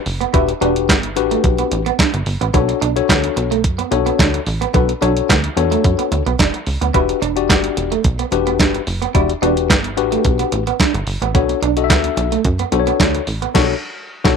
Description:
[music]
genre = early-eighties boogie funk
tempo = 109 BPM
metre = 4/4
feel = straight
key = E dorian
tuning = A4 = 440 Hz
[part]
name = plucky analog bass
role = bass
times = 0.1-14.4 s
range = E1 to F#2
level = -21 LUFS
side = right 1 dB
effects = none
[part]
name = clean 12-bit digital drum machine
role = drums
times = 0.1-14.4 s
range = crash cymbal, handclaps, hi-hat, kick drum, snare drum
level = -17 LUFS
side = right 1 dB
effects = none
[part]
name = electric guitar at the edge of break-up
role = riff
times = 0.2-13.5 s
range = A3 to E4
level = -22 LUFS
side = right 15 dB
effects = lush chorus
[part]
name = tine electric piano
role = accompaniment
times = 0.3-14.4 s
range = D4 to E5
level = -19 LUFS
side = left 14 dB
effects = none
[sound]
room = light reverb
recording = 1960s-style stereo with parts hard left and right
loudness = -14 LUFS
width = side -6 dB against mid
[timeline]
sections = 0.0-14.4 A section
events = band accent 13.6-14.4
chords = 0.0 Em9; 2.5 Bm9; 6.9 Em9; 11.3 Bm9

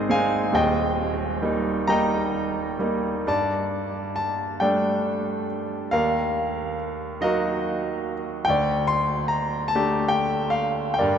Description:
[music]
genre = classical, lyrical solo piano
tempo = 43-48 BPM (dotted quarters)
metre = 6/8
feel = rubato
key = G minor from 3.3 s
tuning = A4 = 439 Hz
[part]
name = bright grand piano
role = solo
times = 0.0-11.2 s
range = Eb1 to C6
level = -22 LUFS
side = equal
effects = none
[sound]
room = wet cathedral reverb, RT60 5.9 s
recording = in a vast, echoing space, nothing above 7.9 kHz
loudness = -22 LUFS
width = side -8 dB against mid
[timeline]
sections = 0.0-3.3 A section; 3.3-11.2 B section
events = none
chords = 0.0 Ab; 0.5 Eb; 3.3 Gsus2; 5.9 Ebmadd9; 8.5 Dsus4

